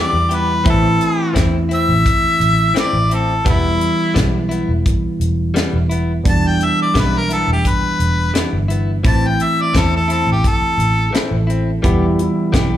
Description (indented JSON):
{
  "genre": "straight-eighth soul blues",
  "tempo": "86 BPM",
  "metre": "4/4",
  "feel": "swing 54% on 16ths",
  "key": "E minor",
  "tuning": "A4 = 442 Hz",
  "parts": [
    { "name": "clear harmonica", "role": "melody", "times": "0.0-11.1 s", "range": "E4 to A5", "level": "-18 LUFS", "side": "left 1 dB", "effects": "overdrive, slapback echo" },
    { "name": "barky tine electric piano", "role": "accompaniment", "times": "0.0-12.8 s", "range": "E3 to E4", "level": "-20 LUFS", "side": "right 2 dB", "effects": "slapback echo" },
    { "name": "direct-recorded clean electric guitar", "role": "stabs", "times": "0.0-12.8 s", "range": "E3 to G4", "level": "-26 LUFS", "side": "left 6 dB", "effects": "slapback echo" },
    { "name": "vintage muted fingered electric bass", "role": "bass", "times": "0.1-12.8 s", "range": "E1 to E2", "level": "-18 LUFS", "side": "equal", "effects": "none" },
    { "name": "tight funk drum kit", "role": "drums", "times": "0.3-12.7 s", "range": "hi-hat, kick drum, snare drum", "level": "-18 LUFS", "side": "equal", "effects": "none" },
    { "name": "warm upright piano", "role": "second line", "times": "11.1-12.8 s", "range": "G3 to A4", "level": "-26 LUFS", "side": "left 2 dB", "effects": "slapback echo" }
  ],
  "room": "little or no reverb",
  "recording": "live gig heard through the venue's PA, club ambience",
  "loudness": "-13 LUFS",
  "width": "side -12 dB against mid",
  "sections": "0.0-12.8 A section",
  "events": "none",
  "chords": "0.0 Em; 0.7 Am; 3.5 Em; 9.0 Am; 11.8 Em"
}